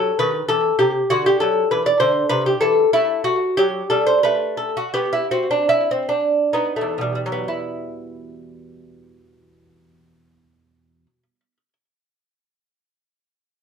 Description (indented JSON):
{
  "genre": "classical, baroque-style dance for lute",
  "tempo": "61-100 BPM",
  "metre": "3/4",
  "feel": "rubato",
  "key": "E minor",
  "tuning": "A4 = 440 Hz",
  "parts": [
    { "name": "lute", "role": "solo", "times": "0.0-11.7 s", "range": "E2 to D5", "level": "-17 LUFS", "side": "equal", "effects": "slapback echo" }
  ],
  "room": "light reverb",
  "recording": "close, detailed microphones",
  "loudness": "-17 LUFS",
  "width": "side -7 dB against mid",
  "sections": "0.0-7.5 A section; 7.5-13.2 B section",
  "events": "slowing down 2.0-7.5",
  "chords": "0.0 D#dim; 0.5 Em; 1.1 D13; 2.3 Am/C; 2.9 F#m7b5; 4.2 N.C.; 5.0 Cmaj9/B; 6.5 B7; 7.5 Em"
}